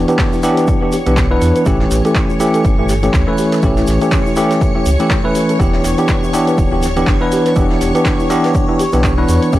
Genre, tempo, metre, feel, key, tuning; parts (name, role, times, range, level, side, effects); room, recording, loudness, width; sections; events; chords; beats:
deep house; 122 BPM; 4/4; swing 57% on 16ths; E dorian; A4 = 440 Hz
bell-like tine electric piano; stabs; 0.0-9.6 s; E3 to B4; -14 LUFS; equal; fast stereo tremolo, sidechain pumping, tape echo
sub bass with octave; bass; 0.0-9.6 s; D1 to E2; -17 LUFS; equal; tube saturation
string machine, violins; texture; 0.0-9.6 s; C#5 to C#6; -24 LUFS; left 1 dB; ensemble chorus, sidechain pumping
soft round pluck; arpeggios; 0.1-9.6 s; C#4 to B4; -24 LUFS; right 2 dB
punchy analog drum machine; drums; 0.1-9.6 s; handclaps, hi-hat; -25 LUFS; equal
tube shaker; percussion; 0.1-9.6 s; -32 LUFS; left 2 dB
electronic kick drum; drums; 0.2-9.6 s; -16 LUFS; equal
soft brush drum kit; drums; 0.2-9.6 s; hi-hat, snare drum; -32 LUFS; right 1 dB
little or no reverb; dry, gritty hardware recording, transformer saturation; -11 LUFS; side -15 dB against mid
0.0-9.6 A section
0.0 Em7; 1.7 A7; 5.6 Em7
0.19 0.68 1.17 | 1.66 2.15 2.65 3.14 | 3.63 4.12 4.61 5.11 | 5.60 6.09 6.58 7.07 | 7.56 8.06 8.55 9.04 | 9.53